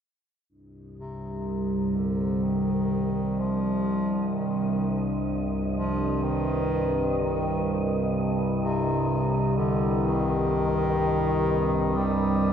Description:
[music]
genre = dark ambient drone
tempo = 63 BPM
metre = 4/4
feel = straight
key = unclear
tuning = A4 = 441 Hz
[part]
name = overtone-sweeping drone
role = drone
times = 1.0-12.5 s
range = C2 to G2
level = -25 LUFS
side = equal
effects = chorus, built-in reverb
[part]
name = wind-like tuned noise texture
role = texture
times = 1.4-12.5 s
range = Eb5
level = -38 LUFS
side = left 1 dB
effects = built-in reverb
[part]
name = warm bass clarinet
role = melody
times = 1.0-12.5 s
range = C3 to G3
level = -29 LUFS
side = equal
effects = diffuse ambient delay
[sound]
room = wet huge ambient reverb, RT60 8.2 s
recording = dark, warm production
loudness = -23 LUFS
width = side -8 dB against mid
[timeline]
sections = 0.5-12.5 A section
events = fade-in on synth texture 0.5-12.5; fade-in on bass clarinet 0.5-12.5; filter sweep on synth drone 0.5-12.5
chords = 0.5 Eb

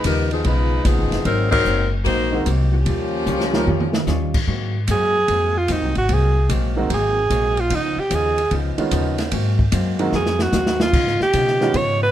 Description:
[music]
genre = jazz, big band swing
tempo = 149 BPM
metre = 4/4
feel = swing 67% on 8ths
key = Ab major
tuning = A4 = 441 Hz
[part]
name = mellow saxophone section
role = melody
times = 0.0-4.3 s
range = F3 to C5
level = -21 LUFS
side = left 2 dB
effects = none
[part]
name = hollow-body jazz guitar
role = accompaniment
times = 0.0-12.0 s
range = Ab2 to F4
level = -28 LUFS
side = left 4 dB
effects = none
[part]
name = upright bass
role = bass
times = 0.0-12.1 s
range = F1 to Cb3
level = -21 LUFS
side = equal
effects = none
[part]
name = open jazz drum kit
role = drums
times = 0.0-11.9 s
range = crash cymbal, hi-hat, kick drum, ride cymbal, snare drum, toms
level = -25 LUFS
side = right 1 dB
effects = none
[part]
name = clear upright piano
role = accompaniment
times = 2.3-3.7, 6.8-11.7 s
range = Eb3 to Gb4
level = -23 LUFS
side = right 3 dB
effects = none
[part]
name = clear alto saxophone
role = melody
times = 4.9-12.1 s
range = Eb4 to Db5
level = -19 LUFS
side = right 2 dB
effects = none
[sound]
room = little or no reverb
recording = close, detailed microphones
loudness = -17 LUFS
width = side -11 dB against mid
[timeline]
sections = 0.0-4.5 A section; 4.5-12.1 B section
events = band accent 1.5; drum fill 3.3-4.1, 10.1-10.9; alto saxophone solo 4.5-12.1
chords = 0.0 Db9; 1.3 Ab9; 2.9 Eb9; 4.5 Ab9; 7.7 Db9; 9.3 Ab9; 10.9 Db9

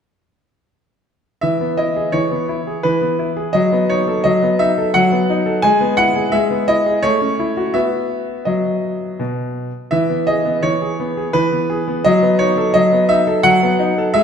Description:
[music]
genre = classical-period piano sonatina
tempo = 85 BPM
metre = 3/4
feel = straight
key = E major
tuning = A4 = 440 Hz
[part]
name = clear grand piano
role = solo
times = 1.4-14.2 s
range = B2 to G#5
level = -14 LUFS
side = equal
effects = none
[sound]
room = wet recital hall reverb, RT60 1.8 s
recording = none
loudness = -14 LUFS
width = side -7 dB against mid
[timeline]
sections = 1.4-14.2 A section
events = none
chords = 1.4 E; 3.5 B7/F#; 5.6 E/G#; 7.0 F#m7/A; 7.8 B; 9.9 E; 12.0 B7/F#

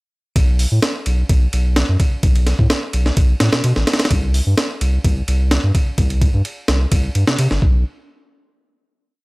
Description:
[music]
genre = breakbeat, breaks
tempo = 128 BPM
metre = 4/4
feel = straight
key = unclear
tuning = A4 = 440 Hz
[part]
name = saturated sub bass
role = bass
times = 0.4-7.8 s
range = G1 to C3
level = -16 LUFS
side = equal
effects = tube saturation
[part]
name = breakbeat sampler-style drum kit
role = drums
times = 0.4-7.7 s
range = hi-hat, kick drum, ride cymbal, snare drum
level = -17 LUFS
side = equal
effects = none
[sound]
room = little or no reverb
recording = dry, gritty hardware recording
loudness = -14 LUFS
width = side -24 dB against mid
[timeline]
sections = 0.4-7.9 drop; 7.9-9.2 final hit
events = drop 0.4-7.9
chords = none

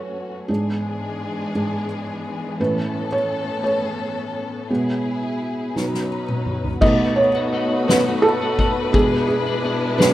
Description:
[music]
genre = six-eight pop ballad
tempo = 57 BPM (dotted quarters)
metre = 6/8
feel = straight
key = E major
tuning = A4 = 440 Hz
[part]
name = felt-muted upright piano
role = accompaniment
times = 0.0-10.1 s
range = G#2 to D#5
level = -21 LUFS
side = right 2 dB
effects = none
[part]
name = warm studio string section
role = sustained chords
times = 0.0-10.1 s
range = G#2 to B4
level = -26 LUFS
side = left 3 dB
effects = none
[part]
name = soft-mallet drum kit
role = drums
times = 5.8-10.1 s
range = crash cymbal, kick drum, ride cymbal, snare drum, toms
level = -23 LUFS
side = left 1 dB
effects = none
[part]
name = twelve-string electric guitar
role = arpeggios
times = 6.8-10.1 s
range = B2 to B4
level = -28 LUFS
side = left 7 dB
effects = none
[sound]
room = little or no reverb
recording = rough home demo mix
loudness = -19 LUFS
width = side -14 dB against mid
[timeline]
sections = 0.0-6.8 A section; 6.8-10.1 B section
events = felt piano solo 0.0-6.8, 6.8-10.1; drum fill 5.8-6.8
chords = 0.5 E7/G#; 2.6 Aadd9; 4.7 E/B; 5.8 Badd9; 6.8 B7; 8.9 E7/B

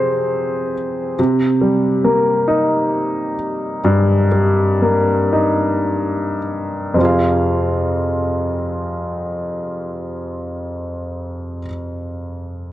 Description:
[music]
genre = pop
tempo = 33-47 BPM (dotted quarters)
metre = 6/8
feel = straight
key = F minor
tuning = A4 = 439 Hz
[part]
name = clear grand piano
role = accompaniment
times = 0.0-12.7 s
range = F2 to F5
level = -16 LUFS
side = equal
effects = none
[sound]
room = moderate plate reverb, RT60 3.3 s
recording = worn, warbling old tape, cassette tape, warbly pitch drift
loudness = -16 LUFS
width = side -14 dB against mid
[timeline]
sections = 0.0-7.0 A section; 7.0-10.6 B section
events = slowing down 1.2-7.0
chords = 0.0 Fm; 1.2 Cm7; 7.0 Fm

